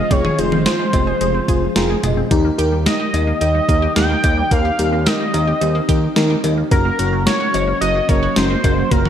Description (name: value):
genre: synth-pop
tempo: 109 BPM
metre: 4/4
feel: straight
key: unclear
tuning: A4 = 440 Hz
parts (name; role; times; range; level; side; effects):
- octave-doubled lead; melody; 0.0-9.1 s; Bb4 to G5; -20 LUFS; equal; chorus, digital delay
- ensemble organ-string; sustained chords; 0.0-9.1 s; Db3 to G4; -26 LUFS; right 1 dB; phaser, ensemble chorus
- resonant blip pluck; arpeggios; 0.0-9.1 s; Gb3 to Ab4; -27 LUFS; equal; phaser, digital delay
- smooth synth bass; bass; 0.0-9.1 s; F1 to Eb2; -20 LUFS; equal; none
- FM electric piano with soft pad layer; accompaniment; 0.1-9.1 s; Db4 to Eb5; -22 LUFS; left 2 dB; chorus
- clean 12-bit digital drum machine; drums; 0.1-9.1 s; cowbell, hi-hat, kick drum, snare drum, toms; -19 LUFS; equal; gated reverb
room: moderate plate reverb, RT60 1.6 s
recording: bright 1980s-style digital production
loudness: -14 LUFS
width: side -9 dB against mid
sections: 0.0-9.1 A section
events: none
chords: 0.0 Fm; 2.3 Eb; 6.7 Gb